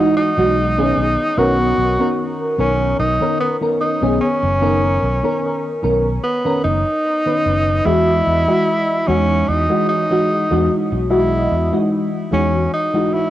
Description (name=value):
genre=vaporwave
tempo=74 BPM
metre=4/4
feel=swing 54% on 16ths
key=B major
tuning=A4 = 439 Hz
part: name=warm tenor saxophone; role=melody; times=0.0-13.3 s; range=B3 to F#4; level=-18 LUFS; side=equal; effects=vintage 12-bit sampler grit, cassette tape, tape echo
part: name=mellow FM electric piano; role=accompaniment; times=0.0-13.3 s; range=D#3 to D#5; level=-18 LUFS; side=equal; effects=phaser, ensemble chorus, cassette tape
part: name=fretless electric bass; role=bass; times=0.4-12.7 s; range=F#1 to E2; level=-20 LUFS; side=equal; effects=wide subtle chorus
room=light reverb, small room ambience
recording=home recording on cassette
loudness=-15 LUFS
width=side -13 dB against mid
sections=0.0-13.3 A section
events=fade-out 12.2-13.3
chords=0.0 Emaj9; 1.0 Bmaj9; 7.9 Emaj9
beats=0.56 | 1.37 2.18 2.99 3.80 | 4.62 5.43 6.24 7.05 | 7.86 8.67 9.48 10.29 | 11.10 11.91 12.72